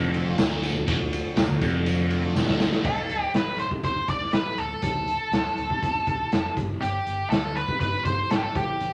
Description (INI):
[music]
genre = psychedelic rock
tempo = 121 BPM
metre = 4/4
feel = straight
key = D dorian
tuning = A4 = 440 Hz
[part]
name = tonewheel organ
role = sustained chords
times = 0.0-2.8 s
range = A3 to A4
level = -37 LUFS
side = equal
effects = none
[part]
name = thick fuzz guitar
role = riff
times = 0.0-2.8 s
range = D2 to A2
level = -28 LUFS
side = equal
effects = distortion, phaser
[part]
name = fingered electric bass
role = bass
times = 0.0-8.9 s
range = D1 to D2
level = -35 LUFS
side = equal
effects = none
[part]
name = pedal harmonium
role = drone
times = 0.0-2.9 s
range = D2 to D3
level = -36 LUFS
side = equal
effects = none
[part]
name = raw garage drum kit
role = drums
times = 0.1-8.9 s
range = crash cymbal, hi-hat, kick drum, ride cymbal, snare drum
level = -29 LUFS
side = equal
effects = none
[part]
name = tambourine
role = percussion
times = 0.1-2.7 s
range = none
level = -49 LUFS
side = equal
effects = none
[part]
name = octave-fuzz lead guitar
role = melody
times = 2.9-8.9 s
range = G4 to D5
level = -29 LUFS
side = equal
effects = distortion
[sound]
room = wet studio reverb, RT60 0.6 s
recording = none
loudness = -25 LUFS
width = mono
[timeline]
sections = 0.0-2.9 A section; 2.9-8.9 B section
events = drum fill 2.4-2.9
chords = 0.0 Dm; 2.9 D5; 6.6 G5